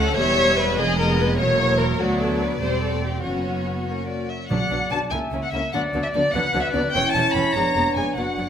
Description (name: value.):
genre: quick classical-period movement for symphony orchestra.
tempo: 98 BPM (dotted quarters).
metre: 6/8.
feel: straight.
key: B minor.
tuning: A4 = 436 Hz.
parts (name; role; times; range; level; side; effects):
warm chamber violin section; melody; 0.0-8.5 s; C#5 to B5; -26 LUFS; left 3 dB; none.
dark studio violin section; second line; 0.0-8.5 s; D4 to D5; -25 LUFS; left 2 dB; none.
warm chamber viola section; accompaniment; 0.0-8.5 s; E3 to D4; -28 LUFS; right 2 dB; none.
dark chamber cello section; bass; 0.0-8.5 s; D2 to D3; -30 LUFS; right 2 dB; none.
warm studio double bass section; bass; 0.0-8.5 s; E1 to D2; -28 LUFS; right 2 dB; none.
concert flute; second line; 4.5-8.5 s; D5 to B5; -27 LUFS; left 1 dB; none.
mellow clarinet; second line; 4.5-8.5 s; F#4 to E5; -27 LUFS; right 1 dB; none.
timpani; percussion; 4.5-5.1 s; B2; -30 LUFS; right 2 dB; none.
dark French horn section; sustained chords; 4.9-8.5 s; F#3 to E4; -28 LUFS; left 1 dB; none.
room: moderate recital hall reverb, RT60 1.4 s.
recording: none.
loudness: -19 LUFS.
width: side -8 dB against mid.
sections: 0.0-4.5 A section; 4.5-8.5 B section.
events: none.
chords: 0.2 Em; 0.8 Fm7b5; 1.4 F#7/E; 2.0 Bm/D; 2.6 C/E; 3.2 F#sus4; 3.9 F#; 4.5 Bm; 5.1 A#dim/C#; 5.7 Bm/D; 6.9 C#dim/E; 7.6 Fdim7.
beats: 0.18 | 0.79 1.39 | 2.00 2.62 | 3.25 3.88 | 4.50 5.12 | 5.73 6.34 | 6.94 7.55 | 8.17.